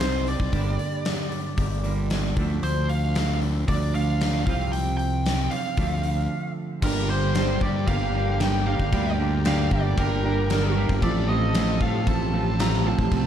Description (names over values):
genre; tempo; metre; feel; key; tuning
indie rock; 114 BPM; 4/4; straight; G minor; A4 = 440 Hz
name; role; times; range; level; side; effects
nasal lead guitar with a parked wah; melody; 0.0-13.3 s; Bb4 to Bb5; -30 LUFS; right 1 dB; overdrive, plate reverb, tape echo
overdriven semi-hollow guitar; riff; 0.0-13.3 s; G2 to G4; -28 LUFS; right 6 dB; lush chorus
twangy electric guitar; riff; 0.0-13.3 s; G2 to Bb4; -38 LUFS; left 10 dB; none
fuzz fingered electric bass; bass; 0.0-13.3 s; G1 to A2; -25 LUFS; left 1 dB; overdrive
big rock drum kit; drums; 0.0-13.2 s; crash cymbal, hi-hat, kick drum, snare drum; -28 LUFS; left 1 dB; none
breathy trumpet; second line; 6.8-13.3 s; G4 to Bb4; -35 LUFS; left 9 dB; plate reverb
string machine, violas; sustained chords; 6.8-13.3 s; G4 to D6; -37 LUFS; left 4 dB; none
room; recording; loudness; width
little or no reverb; dark, warm production; -21 LUFS; side -9 dB against mid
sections
0.0-6.8 A section; 6.8-13.3 B section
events
break 6.3-6.8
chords
0.0 Cm; 0.5 Gm; 2.4 Dm7; 4.5 Csus4; 5.8 Dm7; 6.8 Gm7; 11.0 Fadd9/A